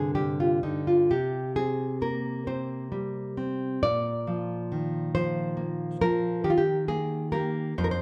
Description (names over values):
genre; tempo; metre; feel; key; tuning
romantic piece for solo classical guitar; 41-46 BPM (dotted quarters); 6/8; rubato; C minor; A4 = 440 Hz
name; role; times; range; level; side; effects
nylon-string guitar; solo; 0.0-8.0 s; F2 to D5; -28 LUFS; equal; none
room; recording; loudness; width
light reverb; none; -28 LUFS; mono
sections
0.0-8.0 A section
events
none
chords
0.0 G5; 1.1 C5; 3.8 Bb; 6.4 Eb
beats
| 1.10 2.47 | 3.82 5.14 | 6.45 7.77